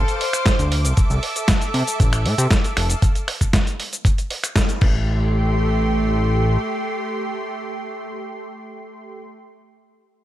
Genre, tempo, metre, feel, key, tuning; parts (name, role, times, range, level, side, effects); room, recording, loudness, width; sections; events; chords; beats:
nu-disco, nu disco; 117 BPM; 4/4; straight; A minor; A4 = 437 Hz
dark studio violin section; melody; 0.0-0.7 s; A4 to C5; -26 LUFS; left 2 dB; ping-pong delay
lush unison pad; sustained chords; 0.0-9.2 s; A3 to D6; -26 LUFS; equal; chorus, sidechain pumping
fat analog bass; bass; 0.0-6.6 s; F1 to C3; -19 LUFS; equal
dusty soul sampler-style drum kit; drums; 0.1-4.9 s; cabasa, crash cymbal, finger snaps, hi-hat, snare drum; -24 LUFS; equal; overdrive
electronic kick drum; drums; 0.5-4.9 s; -18 LUFS; equal; overdrive
little or no reverb; -17 LUFS; side -13 dB against mid
0.0-5.1 A section; 5.1-9.2 B section
drop 0.0-5.1; band accent 4.6
0.0 Dm7; 0.7 C69; 2.8 Fmaj7; 4.8 Am7
0.46 | 0.97 1.49 2.00 2.51 | 3.02 3.54 4.05 4.56 | 5.08 5.59 6.10 6.62 | 7.13 7.64 8.15 8.67